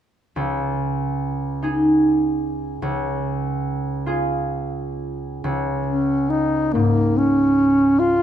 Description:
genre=classical, impressionist duo for alto saxophone and harp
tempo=41-51 BPM (dotted quarters)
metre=12/8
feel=rubato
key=Db major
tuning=A4 = 438 Hz
part: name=concert harp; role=accompaniment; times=0.4-8.2 s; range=Db2 to Ab4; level=-21 LUFS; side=right 1 dB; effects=none
part: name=warm alto saxophone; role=melody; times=5.9-8.2 s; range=Bb3 to F4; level=-16 LUFS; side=equal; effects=none
room=wet recital hall reverb, RT60 1.6 s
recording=close, detailed microphones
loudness=-18 LUFS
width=side -10 dB against mid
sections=0.4-5.4 A section; 5.4-8.2 B section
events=none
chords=0.4 Dbsus2; 2.8 Db

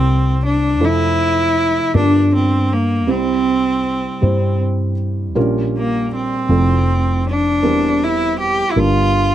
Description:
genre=acoustic folk-pop ballad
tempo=53 BPM (dotted quarters)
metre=6/8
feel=straight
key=unclear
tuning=A4 = 440 Hz
part: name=clear cello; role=melody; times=0.0-9.3 s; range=Bb3 to G4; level=-17 LUFS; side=equal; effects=none
part: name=felt-muted upright piano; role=accompaniment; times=0.0-9.3 s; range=F1 to C5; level=-20 LUFS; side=right 2 dB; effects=none
part: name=hollow-body short-scale fingered electric bass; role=bass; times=0.0-9.3 s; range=E1 to G2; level=-18 LUFS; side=equal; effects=none
room=light reverb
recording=dark, warm production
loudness=-14 LUFS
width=side -12 dB against mid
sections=0.0-9.3 A section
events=none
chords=0.0 C7; 0.8 Fmaj7; 1.9 Gm7; 3.1 C; 5.4 Bbm6; 6.5 Fmaj7; 7.6 C7/E; 8.8 Gm7

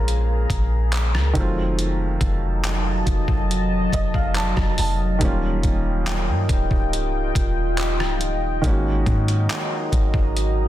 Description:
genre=contemporary R&B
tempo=70 BPM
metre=4/4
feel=straight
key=unclear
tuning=A4 = 440 Hz
part: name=felt-muted upright piano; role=accompaniment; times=0.0-10.7 s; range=Db3 to A5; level=-27 LUFS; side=right 3 dB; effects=none
part: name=deep dark ambient pad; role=sustained chords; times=0.0-10.7 s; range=Gb3 to Bb5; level=-27 LUFS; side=left 1 dB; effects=chorus, built-in reverb
part: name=clean 808-style bass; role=bass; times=0.0-10.7 s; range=Db1 to Ab2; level=-22 LUFS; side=equal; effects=none
part: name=detuned 8-bit digital drum machine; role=drums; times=0.1-10.6 s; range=handclaps, hi-hat, kick drum, rim click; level=-23 LUFS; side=equal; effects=soft clipping on snare
room=digital ambience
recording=dense, heavily limited modern master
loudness=-19 LUFS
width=side -13 dB against mid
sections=0.0-10.7 A section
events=felt piano fill 3.5-5.2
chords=0.0 Bbm7; 1.4 F7b9; 5.2 Eb9; 8.6 Ab9sus4

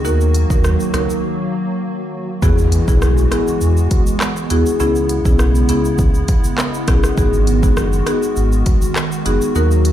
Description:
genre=dancehall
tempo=101 BPM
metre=4/4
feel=straight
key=G# minor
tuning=A4 = 440 Hz
part: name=marimba with medium hard mallets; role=accompaniment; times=0.0-9.9 s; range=A#3 to A#4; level=-20 LUFS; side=left 1 dB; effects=sidechain pumping
part: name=hollow soft pad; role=sustained chords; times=0.0-9.9 s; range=C#3 to F#4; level=-22 LUFS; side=right 1 dB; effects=ensemble chorus, sidechain pumping
part: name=sub bass with octave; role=bass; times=0.0-9.9 s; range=F#1 to E2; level=-16 LUFS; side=equal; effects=none
part: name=afro-pop drum kit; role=drums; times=0.0-9.9 s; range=handclaps, hi-hat, kick drum, rim click, shaker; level=-18 LUFS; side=equal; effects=none
part: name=egg shaker and timbales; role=percussion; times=0.1-9.9 s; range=none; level=-38 LUFS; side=left 5 dB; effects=none
part: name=impact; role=sound effects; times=2.4-4.8 s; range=none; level=-24 LUFS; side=equal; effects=none
room=little or no reverb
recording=played on a big sound system in a bare room, large studio reverb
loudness=-13 LUFS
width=side -11 dB against mid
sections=0.0-2.4 A section; 2.4-9.9 B section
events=break 1.2-2.4; impact 2.4-4.8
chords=0.0 D#m; 2.4 Eadd9; 4.8 C#m7; 7.2 G#m7

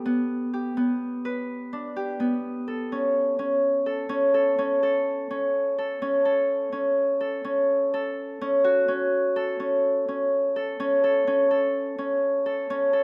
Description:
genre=contemporary instrumental, contemporary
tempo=126 BPM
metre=7/4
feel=straight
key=unclear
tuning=A4 = 440 Hz
part: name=Celtic harp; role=solo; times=0.0-13.0 s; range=B3 to B4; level=-25 LUFS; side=equal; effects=none
room=moderate recital hall reverb, RT60 1.3 s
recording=none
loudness=-25 LUFS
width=mono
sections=0.0-13.0 A section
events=none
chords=0.0 Gadd9; 3.2 F#m

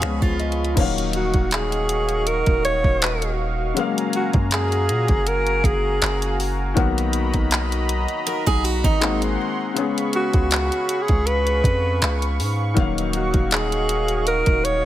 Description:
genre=contemporary R&B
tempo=80 BPM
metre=4/4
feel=swing 54% on 16ths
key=Eb minor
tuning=A4 = 442 Hz
part: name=felt-muted upright piano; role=accompaniment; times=0.0-14.8 s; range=Db3 to Ab5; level=-26 LUFS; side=left 6 dB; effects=none
part: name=warm analog pad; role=sustained chords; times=0.0-14.8 s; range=Gb4 to Db6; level=-28 LUFS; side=right 1 dB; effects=chorus, sidechain pumping
part: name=picked steel-string acoustic guitar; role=arpeggios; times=0.0-0.7, 8.3-9.2 s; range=D#4 to A#4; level=-27 LUFS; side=right 5 dB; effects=ping-pong delay
part: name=long sustained 808-style bass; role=bass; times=0.0-14.8 s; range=Eb1 to Bb2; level=-24 LUFS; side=equal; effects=none
part: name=smooth R&B drum kit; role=drums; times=0.0-14.8 s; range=crash cymbal, finger snaps, handclaps, hi-hat, kick drum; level=-22 LUFS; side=equal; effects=none
part: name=breathy alto saxophone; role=melody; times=1.2-14.8 s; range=Gb4 to Db5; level=-23 LUFS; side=right 1 dB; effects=none
room=studio ambience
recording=none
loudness=-18 LUFS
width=side -13 dB against mid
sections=0.8-14.8 A section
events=felt piano fill 0.0-0.8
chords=0.0 Db7; 0.8 Ebm9; 3.8 Gbmaj9; 6.8 Bmaj7; 9.0 Ab9; 9.8 Db7; 12.8 Ebm9

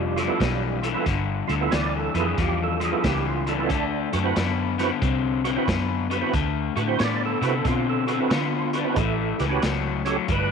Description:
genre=electric blues shuffle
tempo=91 BPM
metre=4/4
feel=swing 65% on 8ths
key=D mixolydian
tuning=A4 = 439 Hz
part: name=percussive tonewheel organ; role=accompaniment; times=0.0-10.5 s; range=F#3 to D5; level=-27 LUFS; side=right 12 dB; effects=overdrive, chorus vibrato, slow rotary speaker
part: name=crunchy overdriven guitar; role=riff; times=0.0-10.5 s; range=G2 to C4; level=-25 LUFS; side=left 11 dB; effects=none
part: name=vintage muted fingered electric bass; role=bass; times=0.0-10.5 s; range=F1 to D3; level=-28 LUFS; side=right 1 dB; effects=none
part: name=crunchy breakbeat drum kit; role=drums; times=0.2-10.5 s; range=hi-hat, kick drum, snare drum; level=-29 LUFS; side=right 1 dB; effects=none
room=light reverb, small room reverb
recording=1960s-style stereo with parts hard left and right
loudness=-21 LUFS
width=side -6 dB against mid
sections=0.0-10.5 A section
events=none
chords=0.0 G13; 3.7 D13; 9.0 A13

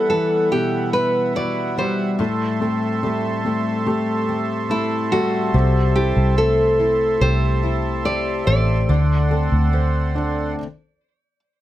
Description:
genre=pop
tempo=72 BPM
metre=4/4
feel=straight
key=unclear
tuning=A4 = 440 Hz
part: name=nylon-string guitar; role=melody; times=0.0-11.4 s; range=E4 to D5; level=-21 LUFS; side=equal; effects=none
part: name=clear concert grand piano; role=accompaniment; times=0.0-10.6 s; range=B2 to C5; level=-25 LUFS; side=equal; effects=none
part: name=accordion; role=sustained chords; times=0.0-10.6 s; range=G3 to C6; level=-27 LUFS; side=right 5 dB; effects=light tremolo tuning
part: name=fingerpicked steel-string acoustic guitar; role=arpeggios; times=0.0-10.7 s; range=A2 to G4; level=-26 LUFS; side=left 6 dB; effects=none
part: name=vintage muted fingered electric bass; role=bass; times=5.5-10.5 s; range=A1 to D2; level=-18 LUFS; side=equal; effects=none
room=light reverb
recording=none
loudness=-17 LUFS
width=side -14 dB against mid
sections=0.0-11.6 A section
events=stop 10.6-11.6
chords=0.0 Emadd9; 2.2 Am7; 8.9 D7

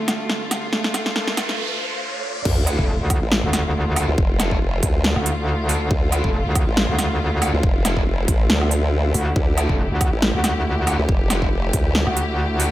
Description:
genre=heavy wobble dubstep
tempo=139 BPM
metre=4/4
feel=swing 55% on 16ths, half-time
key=D minor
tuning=A4 = 441 Hz
part: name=warm cello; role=melody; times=0.0-1.6 s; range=A3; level=-30 LUFS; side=equal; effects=dub echo
part: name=rich studio string section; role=sustained chords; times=0.0-12.7 s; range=D2 to G4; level=-28 LUFS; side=left 1 dB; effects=sidechain pumping
part: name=riser, noise sweep and sub drop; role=sound effects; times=0.0-4.2 s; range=none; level=-28 LUFS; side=right 1 dB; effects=none
part: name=big-room dance drum kit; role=drums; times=0.1-12.7 s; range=crash cymbal, hi-hat, snare drum, woodblock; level=-23 LUFS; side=equal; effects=overdrive
part: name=formant-sweep wobble bass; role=bass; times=2.5-12.0 s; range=F1 to D2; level=-20 LUFS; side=equal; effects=chorus, overdrive
part: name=electronic kick drum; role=drums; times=2.5-11.8 s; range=none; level=-21 LUFS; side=equal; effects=overdrive
part: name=fuzz guitar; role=stabs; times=2.7-12.7 s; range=D4 to A4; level=-31 LUFS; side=equal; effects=distortion, dub echo
part: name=metallic wobble bass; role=bass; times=2.8-12.7 s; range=F1 to D2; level=-20 LUFS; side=equal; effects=chorus, overdrive
room=little or no reverb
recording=high-pass filter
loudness=-18 LUFS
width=side -14 dB against mid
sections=0.0-2.5 A section; 2.5-12.7 B section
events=build-up 0.0-2.5; drum fill 0.0-1.6; riser 0.0-2.5; noise sweep 0.7-2.5; break 1.6-2.5; drop 2.5-12.7; impact 2.5-4.2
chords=0.0 Dm; 2.5 Dmadd9

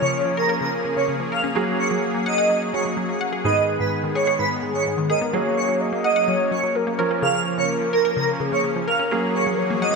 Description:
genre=pop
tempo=127 BPM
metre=4/4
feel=straight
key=F# major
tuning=A4 = 439 Hz
part: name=airy dreamy lead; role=melody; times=0.0-10.0 s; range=A#4 to E#5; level=-23 LUFS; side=right 3 dB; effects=chorus, phaser, ping-pong delay
part: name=mellow horn-like synth lead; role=melody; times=0.0-1.3, 4.6-10.0 s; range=G#4 to D#5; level=-26 LUFS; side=left 4 dB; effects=chorus, ping-pong delay
part: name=clear baby grand piano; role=accompaniment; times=0.0-10.0 s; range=D#3 to A#4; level=-27 LUFS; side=right 5 dB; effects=analog chorus
part: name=soft supersaw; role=sustained chords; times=0.0-10.0 s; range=D#3 to G#4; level=-28 LUFS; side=left 1 dB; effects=none
part: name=analog pluck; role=arpeggios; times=0.0-9.9 s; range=G#2 to F#5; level=-28 LUFS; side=left 3 dB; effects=chorus, ping-pong delay
part: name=riser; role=sound effects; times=9.4-10.0 s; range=none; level=-31 LUFS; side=left 1 dB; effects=none
room=wet lush hall reverb, RT60 1.7 s, digital ambience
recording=bright 1980s-style digital production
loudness=-19 LUFS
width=side -4 dB against mid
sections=0.0-10.0 A section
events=riser 9.4-10.0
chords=0.0 C#6; 1.6 F#add9; 3.4 G#m; 5.3 F#add9; 7.0 C#6; 9.1 F#add9

